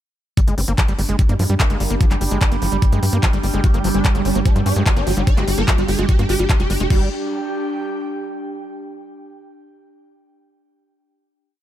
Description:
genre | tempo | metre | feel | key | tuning
psychedelic trance | 147 BPM | 4/4 | straight | G phrygian | A4 = 440 Hz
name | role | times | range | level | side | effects
evolving wavetable pad | sustained chords | 1.5-6.9 s | G3 | -28 LUFS | right 7 dB | phaser, built-in reverb, sidechain pumping
overdriven acid bass | riff | 0.4-7.1 s | F3 to G4 | -26 LUFS | moving between left 5 dB and right 4 dB | distortion, auto-pan, sidechain pumping, dub echo
drum and bass drum kit | drums | 0.4-7.0 s | crash cymbal, handclaps, hi-hat | -26 LUFS | equal | none
electronic kick drum | drums | 0.4-7.0 s | none | -16 LUFS | equal | none
airy breathy pad | texture | 0.8-8.5 s | D4 to G5 | -28 LUFS | equal | chorus, sidechain pumping
tight sequencer bass | bass | 0.5-7.1 s | F1 to G2 | -20 LUFS | equal | none
formant-sweep wobble bass | second line | 0.6-5.9 s | G3 to F4 | -36 LUFS | left 3 dB | none
swarming rave lead | melody | 3.6-7.1 s | G3 to D5 | -24 LUFS | equal | chorus, phaser, sidechain pumping, dub echo
room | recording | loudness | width
little or no reverb | none | -16 LUFS | side -12 dB against mid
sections
0.4-6.9 groove; 6.9-8.5 final chord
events
none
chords
0.4 G5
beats
| 0.37 0.78 1.19 1.60 | 2.01 2.41 2.82 3.23 | 3.64 4.05 4.46 4.86 | 5.27 5.68 6.09 6.50 | 6.90 7.31 7.72 8.13

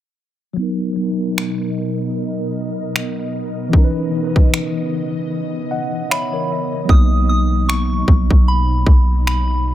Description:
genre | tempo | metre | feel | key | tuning
contemporary R&B | 76 BPM | 4/4 | swing 58% on 16ths | B major | A4 = 441 Hz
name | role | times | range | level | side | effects
mellow tine electric piano | accompaniment | 0.5-9.7 s | E3 to F#5 | -22 LUFS | equal | medium stereo tremolo, low-pass filter, analog delay
ethereal airy pad | sustained chords | 1.0-9.7 s | B2 to D#5 | -26 LUFS | equal | ensemble chorus, built-in reverb, sidechain pumping, low-pass filter
trap drum kit | drums | 1.4-9.5 s | finger snaps, kick drum | -13 LUFS | equal | none
soft synth bell | melody | 6.1-9.7 s | B5 to D#6 | -23 LUFS | right 2 dB | chorus, analog delay
warm 808-style bass | bass | 6.9-9.7 s | A#1 to B1 | -16 LUFS | equal | none
room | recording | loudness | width
light reverb | echo-heavy mix | -15 LUFS | side -13 dB against mid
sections
0.6-6.9 A section; 6.9-9.7 B section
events
filter sweep 0.6-6.9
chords
0.6 Bmaj7; 3.7 C#m9; 6.5 Bmaj7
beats
| 0.58 1.37 2.15 2.94 | 3.73 4.52 5.31 6.10 | 6.89 7.68 8.47 9.26

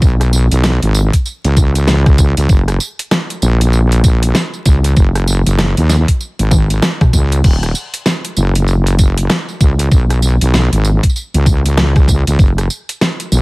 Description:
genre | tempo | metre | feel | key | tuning
glitch hop | 97 BPM | 4/4 | swing 61% on 16ths | unclear | A4 = 440 Hz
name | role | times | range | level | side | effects
wobble bass | bass | 0.0-13.4 s | Eb1 to Eb2 | -11 LUFS | equal | chorus
dubstep drum kit | drums | 0.0-13.4 s | crash cymbal, hi-hat, rim click, snare drum, tambourine, toms | -17 LUFS | equal | none
electronic kick drum | drums | 0.0-12.5 s | none | -10 LUFS | equal | none
room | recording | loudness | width
digital ambience | vinyl crackle | -10 LUFS | side -24 dB against mid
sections
0.0-13.4 A section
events
drum fill 6.5-7.4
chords
none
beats
| 0.02 0.64 1.26 1.87 | 2.49 3.11 3.73 4.35 | 4.97 5.59 6.20 6.82 | 7.44 8.06 8.68 9.30 | 9.92 10.53 11.15 11.77 | 12.39 13.01

